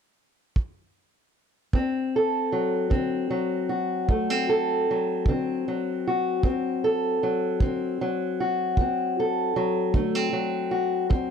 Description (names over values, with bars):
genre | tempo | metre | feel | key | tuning
acoustic country blues, solo or duo | 51 BPM (dotted quarters) | 12/8 | straight | D mixolydian | A4 = 440 Hz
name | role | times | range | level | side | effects
kick drum | drums | 0.6-11.3 s | none | -22 LUFS | right 1 dB | none
fingerpicked steel-string acoustic guitar | melody | 1.7-11.3 s | D2 to A4 | -23 LUFS | left 1 dB | none
room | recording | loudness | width
little or no reverb | dry, close 1970s-style studio recording | -23 LUFS | side -7 dB against mid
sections
0.0-1.7 A section; 1.7-11.3 B section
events
none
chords
0.0 N.C.; 1.7 D7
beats
0.56 | 1.74 2.91 4.08 5.26 | 6.43 7.60 8.77 9.94 | 11.11